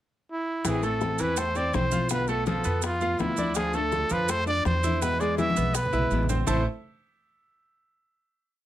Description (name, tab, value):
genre	latin, Cuban son and guajira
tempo	165 BPM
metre	4/4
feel	straight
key	A harmonic minor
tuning	A4 = 440 Hz
part	breathy trumpet	melody	0.3-6.6 s	E4 to E5	-28 LUFS	right 1 dB	none
part	nylon-string guitar	accompaniment	0.6-6.6 s	A2 to F4	-33 LUFS	left 5 dB	none
part	upright bass	bass	0.6-6.6 s	A1 to F2	-30 LUFS	equal	none
part	bongos	percussion	0.6-6.6 s	none	-37 LUFS	left 7 dB	none
part	congas	percussion	0.6-6.6 s	none	-34 LUFS	left 2 dB	none
part	maracas	percussion	0.6-6.6 s	none	-36 LUFS	right 10 dB	none
part	bright grand piano	arpeggios	0.7-6.6 s	E3 to A5	-31 LUFS	right 2 dB	none
room	light reverb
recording	close, detailed microphones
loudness	-24 LUFS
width	side -12 dB against mid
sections	0.0-0.6 pickup bar; 0.6-6.5 verse; 6.5-7.9 final chord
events	drum fill 5.4-6.5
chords	0.0 N.C.; 0.6 Am; 2.1 Bm7b5; 3.6 Dm; 5.0 E; 6.5 Am